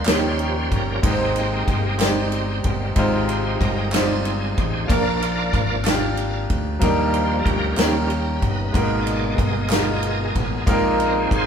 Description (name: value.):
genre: slow gospel.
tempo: 62 BPM (dotted quarters).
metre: 6/8.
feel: straight.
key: Eb major.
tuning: A4 = 440 Hz.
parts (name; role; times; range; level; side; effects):
clear baby grand piano; accompaniment; 0.0-11.5 s; Bb2 to D5; -23 LUFS; equal; none.
bright tonewheel organ; sustained chords; 0.0-11.5 s; Cb3 to F5; -26 LUFS; right 1 dB; slow rotary speaker, chorus vibrato.
fingered electric bass; bass; 0.0-11.5 s; G1 to Eb2; -25 LUFS; equal; none.
natural country drum kit; drums; 0.1-11.5 s; kick drum, ride cymbal, snare drum; -23 LUFS; equal; none.
group handclap; percussion; 0.1-10.0 s; none; -32 LUFS; right 3 dB; none.
room: moderate studio reverb, RT60 0.8 s.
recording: band playing live in one room.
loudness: -18 LUFS.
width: side -7 dB against mid.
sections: 0.0-11.5 A section.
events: tonewheel organ solo 0.0-11.5.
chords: 0.1 Eb7; 1.0 Abmaj7; 3.0 Fm7; 4.9 Bb; 6.8 Ebmaj7; 7.8 Eb7; 8.7 Abmadd9; 10.7 Bb7sus4.